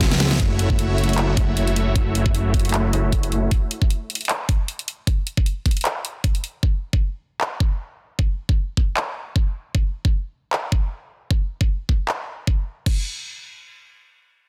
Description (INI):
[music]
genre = future bass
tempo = 154 BPM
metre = 4/4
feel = swing 55% on 16ths, half-time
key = F# minor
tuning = A4 = 440 Hz
[part]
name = dense compressed supersaw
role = riff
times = 0.0-3.5 s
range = A3 to E5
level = -27 LUFS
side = equal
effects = sidechain pumping, low-pass filter, digital delay
[part]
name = fat analog bass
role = bass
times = 0.0-3.5 s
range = F#1 to C#2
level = -24 LUFS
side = equal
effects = sidechain pumping
[part]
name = dubstep drum kit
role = drums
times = 0.0-12.9 s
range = crash cymbal, handclaps, hi-hat, snare drum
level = -28 LUFS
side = equal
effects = none
[part]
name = electronic kick drum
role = drums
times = 0.0-12.9 s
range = none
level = -22 LUFS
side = equal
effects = none
[sound]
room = little or no reverb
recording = dense, heavily limited modern master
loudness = -22 LUFS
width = mono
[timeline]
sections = 0.4-12.9 A section; 12.9-14.5 B section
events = drum fill 0.0-0.4; filter sweep on supersaw synth 0.4-3.5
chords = 0.4 F#m7; 3.5 N.C.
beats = 0.01 | 0.40 0.79 1.18 1.56 | 1.95 2.34 2.73 3.12 | 3.51 3.90 4.29 4.68 | 5.07 5.46 5.85 6.24 | 6.63 7.02 7.41 7.80 | 8.19 8.58 8.97 9.36 | 9.75 10.14 10.53 10.91 | 11.30 11.70 12.08 12.47 | 12.86